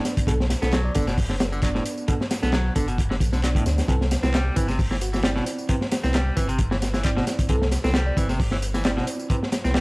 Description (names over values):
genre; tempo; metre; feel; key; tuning
breakbeat, breaks; 133 BPM; 4/4; swing 53% on 16ths; unclear; A4 = 439 Hz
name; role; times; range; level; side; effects
clean electric guitar; riff; 0.0-9.8 s; A2 to C4; -30 LUFS; equal; spring reverb
tine electric piano; stabs; 0.0-9.8 s; B3 to D5; -31 LUFS; right 2 dB; overdrive, analog delay
crunchy breakbeat drum kit; drums; 0.1-9.8 s; hi-hat, kick drum, snare drum; -23 LUFS; equal; none
garage drum kit; drums; 0.1-9.8 s; handclaps, ride cymbal, tambourine; -36 LUFS; equal; none
bell-like FM electric piano; melody; 0.3-8.7 s; F#4 to D5; -34 LUFS; equal; chorus, phaser, small speaker sound, analog delay
saturated sub bass; bass; 0.3-9.8 s; F#1 to D2; -25 LUFS; equal; tube saturation
room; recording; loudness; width
little or no reverb; dry, gritty hardware recording, transformer saturation, vinyl crackle; -20 LUFS; side -26 dB against mid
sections
0.0-9.8 A section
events
none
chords
0.0 Bm7; 3.9 Cmaj7